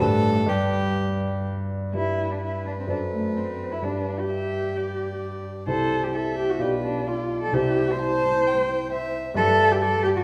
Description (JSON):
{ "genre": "quick classical-period movement for piano trio", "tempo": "130 BPM", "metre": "4/4", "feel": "uneven beats, rubato", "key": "G major", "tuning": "A4 = 436 Hz", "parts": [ { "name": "rich violin", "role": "melody", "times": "0.0-10.2 s", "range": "G4 to A5", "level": "-34 LUFS", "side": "equal", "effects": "none" }, { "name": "dark cello", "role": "second line", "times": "0.0-10.2 s", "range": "G2 to C5", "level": "-27 LUFS", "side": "equal", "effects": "none" }, { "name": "dark baby grand piano", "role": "accompaniment", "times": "0.0-10.2 s", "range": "B1 to D5", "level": "-29 LUFS", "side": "equal", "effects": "none" } ], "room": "wet recital hall reverb, RT60 1.6 s", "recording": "none", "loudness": "-24 LUFS", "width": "mono", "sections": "0.0-2.0 A section; 2.0-10.2 A section", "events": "none", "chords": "0.0 G; 2.9 D7/F#; 3.8 G; 5.7 C; 6.6 G7/B; 7.5 C; 9.4 G" }